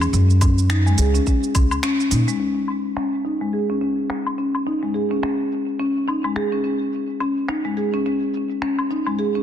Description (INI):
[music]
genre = organic downtempo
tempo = 106 BPM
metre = 4/4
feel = swing 58% on 16ths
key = unclear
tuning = A4 = 439 Hz
[part]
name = marimba with soft mallets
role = arpeggios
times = 0.0-9.4 s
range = G#3 to G#4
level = -21 LUFS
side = left 1 dB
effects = low-pass filter, digital delay
[part]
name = upright bass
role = bass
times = 0.0-2.2 s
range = C#2 to A#2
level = -17 LUFS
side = equal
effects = sidechain pumping
[part]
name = organic electronic drum kit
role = drums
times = 0.0-9.4 s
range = cabasa, finger snaps, hi-hat, woodblock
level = -28 LUFS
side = left 1 dB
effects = low-pass filter on perc, soft clipping on snare, low-pass filter on snare, low-pass filter on hats
[part]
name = electronic kick drum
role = drums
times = 0.4-1.7 s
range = none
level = -18 LUFS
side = equal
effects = none
[sound]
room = light reverb, small room ambience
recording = dense, heavily limited modern master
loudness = -18 LUFS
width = side -10 dB against mid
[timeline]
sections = 0.0-2.4 A section; 2.4-9.4 B section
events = filter sweep on marimba 2.4-9.4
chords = 0.1 F#5; 2.4 G#sus4